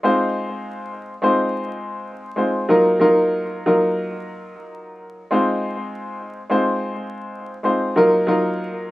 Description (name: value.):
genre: hip hop.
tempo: 91 BPM.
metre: 4/4.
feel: swing 59% on 16ths.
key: unclear.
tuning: A4 = 440 Hz.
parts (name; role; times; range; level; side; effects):
clear upright piano; solo; 0.0-8.9 s; Gb3 to C5; -18 LUFS; equal; cassette tape, high-pass filter, low-pass filter.
room: moderate small room reverb, RT60 0.6 s.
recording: rough home demo mix, vinyl crackle.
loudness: -17 LUFS.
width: side -17 dB against mid.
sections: 0.0-8.9 A section.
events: none.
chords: 0.1 Fm7; 2.7 Ebmadd9; 5.3 Fm7; 8.0 Ebmadd9.